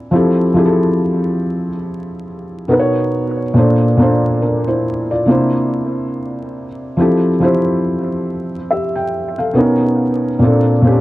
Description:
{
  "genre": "hip hop",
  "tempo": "70 BPM",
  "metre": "4/4",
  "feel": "swing 59% on 16ths",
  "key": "unclear",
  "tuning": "A4 = 441 Hz",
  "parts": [
    { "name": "felt-muted upright piano", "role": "solo", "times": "0.0-11.0 s", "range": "Bb2 to G5", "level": "-13 LUFS", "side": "equal", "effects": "cassette tape, low-pass filter, analog delay" }
  ],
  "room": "moderate small room reverb, RT60 0.6 s",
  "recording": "dark, warm production, vinyl crackle",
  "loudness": "-13 LUFS",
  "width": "side -17 dB against mid",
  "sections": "0.0-7.0 A section; 7.0-11.0 A section",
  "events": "none",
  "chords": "0.1 Fmaj7; 2.7 Bmaj7; 3.6 Bbmaj7; 5.3 C7; 7.0 Fmaj7; 9.6 Bmaj7; 10.4 Bbmaj7",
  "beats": "| 0.12 0.98 1.84 2.69 | 3.55 4.41 5.26 6.12 | 6.98 7.84 8.69 9.55 | 10.41"
}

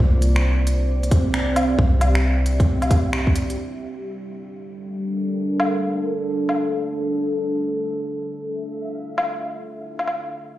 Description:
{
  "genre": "future garage",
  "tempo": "134 BPM",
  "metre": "4/4",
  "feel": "swing 63% on 16ths",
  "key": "G dorian",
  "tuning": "A4 = 437 Hz",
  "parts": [
    { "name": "dark analog pad", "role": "sustained chords", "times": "0.0-10.3 s", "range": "G3 to F5", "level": "-24 LUFS", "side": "equal", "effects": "chorus, vintage 12-bit sampler grit, sidechain pumping" },
    { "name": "soft 808-style bass", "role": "bass", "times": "0.0-3.6 s", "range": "C2", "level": "-19 LUFS", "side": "equal", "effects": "sidechain pumping" },
    { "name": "garage drum kit", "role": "drums", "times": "0.2-10.2 s", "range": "finger snaps, hi-hat, woodblock", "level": "-26 LUFS", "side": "left 1 dB", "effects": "none" },
    { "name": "electronic kick drum", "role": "drums", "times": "1.1-3.3 s", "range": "none", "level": "-19 LUFS", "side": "equal", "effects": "none" }
  ],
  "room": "moderate huge ambient reverb, RT60 7.7 s",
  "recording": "played on a big sound system in a bare room, stone room reverb",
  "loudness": "-19 LUFS",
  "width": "side -14 dB against mid",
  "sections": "0.0-3.6 A section; 3.6-10.6 B section",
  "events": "stop 10.3",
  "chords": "0.0 C9; 3.6 Gmadd9; 7.2 Dmadd9",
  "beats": "| 0.00 0.44 0.89 1.34 | 1.79 2.23 2.68 3.13 | 3.58 4.03 4.47 4.92 | 5.37 5.82 6.26 6.71 | 7.16 7.61 8.05 8.50 | 8.95 9.40 9.85 10.29"
}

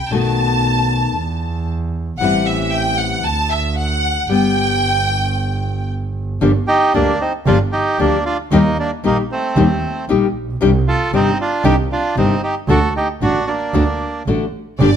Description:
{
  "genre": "tango",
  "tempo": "115 BPM",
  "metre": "4/4",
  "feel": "rubato",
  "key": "G major, G minor from 6.4 s",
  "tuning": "A4 = 441 Hz",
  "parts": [
    { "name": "warm studio violin section", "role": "second line", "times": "0.0-5.9, 14.8-15.0 s", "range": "D5 to A5", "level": "-19 LUFS", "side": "equal", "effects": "none" },
    { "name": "warm double bass", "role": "bass", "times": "0.0-15.0 s", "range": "G1 to E2", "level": "-20 LUFS", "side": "right 2 dB", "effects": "none" },
    { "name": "nylon-string guitar", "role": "accompaniment", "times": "0.1-14.9 s", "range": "B2 to G4", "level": "-18 LUFS", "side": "left 4 dB", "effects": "none" },
    { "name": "bandoneon", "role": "melody", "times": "6.7-14.2 s", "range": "A3 to A4", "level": "-18 LUFS", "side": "right 2 dB", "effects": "none" }
  ],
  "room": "moderate large studio reverb, RT60 1.2 s",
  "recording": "none",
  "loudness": "-15 LUFS",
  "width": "side -8 dB against mid",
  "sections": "0.0-6.4 A section; 6.4-15.0 B section",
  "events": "violin section solo 0.0-6.4",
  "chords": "0.1 B7; 1.2 Esus4; 2.2 Am7; 3.3 D; 4.3 G; 6.4 Gm7; 8.5 Eb; 10.6 Cmadd9; 12.7 D",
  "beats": "| 0.12 0.64 1.17 1.69 | 2.21 2.73 3.26 3.78 | 4.30 4.83 5.35 5.88 | 6.42 6.95 7.47 8.00 | 8.52 9.04 9.57 10.09 | 10.61 11.12 11.64 12.16 | 12.69 13.21 13.74 14.27 | 14.80"
}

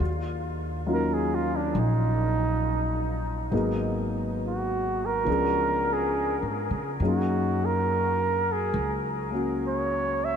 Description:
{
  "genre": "jazz ballad",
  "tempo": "69 BPM",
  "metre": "4/4",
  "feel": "swing 67% on 8ths",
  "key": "Eb minor",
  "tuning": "A4 = 442 Hz",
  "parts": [
    { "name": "dark baby grand piano", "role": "accompaniment", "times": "0.0-10.4 s", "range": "F3 to Ab4", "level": "-29 LUFS", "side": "left 2 dB", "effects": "none" },
    { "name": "upright bass", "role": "bass", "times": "0.0-10.4 s", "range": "Ab1 to Db3", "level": "-30 LUFS", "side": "left 1 dB", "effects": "none" },
    { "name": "trumpet with bucket mute", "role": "melody", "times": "0.9-10.4 s", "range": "D4 to Fb5", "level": "-28 LUFS", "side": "right 3 dB", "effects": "ping-pong delay" }
  ],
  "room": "moderate huge ambient reverb, RT60 7.8 s",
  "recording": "dreamy mix soaked in reverb",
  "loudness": "-24 LUFS",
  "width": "side -7 dB against mid",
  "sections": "0.0-10.4 A section",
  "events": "muted trumpet solo 0.0-10.4",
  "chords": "0.0 Ebm9; 3.5 Abm9; 5.3 Db7b9; 7.0 Gb69",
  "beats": "| 0.00 0.89 1.77 2.65 | 3.52 4.40 5.27 6.14 | 7.00 7.87 8.73 9.60"
}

